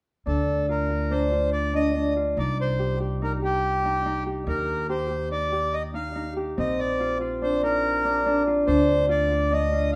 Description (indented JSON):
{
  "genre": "contemporary instrumental, chamber music in an uneven meter",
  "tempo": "143 BPM",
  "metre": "5/4",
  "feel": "straight",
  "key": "D phrygian",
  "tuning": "A4 = 436 Hz",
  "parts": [
    { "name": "accordion", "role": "melody", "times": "0.3-10.0 s", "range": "G4 to F5", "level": "-29 LUFS", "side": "equal", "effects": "none" },
    { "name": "Celtic harp", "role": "arpeggios", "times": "0.3-10.0 s", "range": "C4 to G4", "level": "-28 LUFS", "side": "equal", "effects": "none" },
    { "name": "upright bass", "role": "bass", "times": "0.3-10.0 s", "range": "Bb1 to Eb2", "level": "-31 LUFS", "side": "equal", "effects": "none" }
  ],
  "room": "wet studio reverb, RT60 0.9 s",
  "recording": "heard from further back in the room",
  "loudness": "-25 LUFS",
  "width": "mono",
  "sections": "0.3-10.0 A section",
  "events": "none",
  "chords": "0.3 Dm; 2.4 Cm; 4.5 Eb6; 6.6 Bbsus2; 8.7 Dm"
}